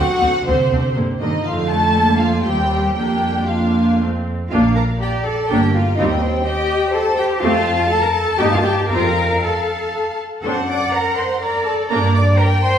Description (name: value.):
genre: quick classical-period movement for string orchestra.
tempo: 112-127 BPM.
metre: 3/4.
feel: rubato.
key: Bb major.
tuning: A4 = 437 Hz.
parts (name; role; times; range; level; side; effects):
rich studio violin section; melody; 0.0-12.8 s; Bb4 to A5; -23 LUFS; left 1 dB; none.
clear studio violin section; second line; 0.0-12.8 s; C4 to D6; -24 LUFS; equal; none.
bright studio viola section; accompaniment; 0.0-12.1 s; D3 to F4; -20 LUFS; right 1 dB; none.
bright studio double bass section; bass; 0.0-12.3 s; G1 to G2; -21 LUFS; right 1 dB; none.
rich studio cello section; bass; 0.0-12.8 s; C3 to D5; -21 LUFS; left 1 dB; none.
room: wet stone room reverb, RT60 1.4 s.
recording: heard from further back in the room.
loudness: -15 LUFS.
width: side -9 dB against mid.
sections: 0.0-4.5 A section; 4.5-12.8 B section.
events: none.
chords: 0.0 D7; 1.0 Gm; 1.5 Dm/F; 2.4 Cm/Eb; 3.0 Bb/F; 4.0 F; 4.5 Bb; 5.5 Gm7; 6.0 Cm/Eb; 7.4 F; 8.4 Eb/G; 8.9 F; 10.4 D7/F#; 11.9 Gm.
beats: 0.47 0.96 | 1.45 1.94 2.44 | 2.95 3.48 4.00 | 4.52 5.01 5.50 | 5.97 6.45 6.93 | 7.41 7.89 8.39 | 8.90 9.42 9.93 | 10.44 10.94 11.43 | 11.91 12.39.